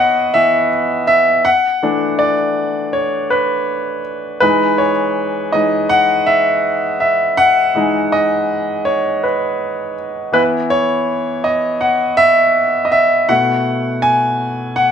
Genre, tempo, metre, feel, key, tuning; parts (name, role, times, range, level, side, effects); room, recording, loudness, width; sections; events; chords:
soul; 81 BPM; 4/4; straight; E major; A4 = 442 Hz
clear concert grand piano; solo; 0.0-14.9 s; B2 to G#5; -13 LUFS; equal
moderate studio reverb, RT60 0.5 s; band playing live in one room; -13 LUFS; side -8 dB against mid
0.0-14.9 A section
grand piano solo 0.0-14.9
0.0 C#m7/E; 1.5 Bm7/E; 4.4 Emaj9; 10.3 C#m7/E; 13.3 B7sus4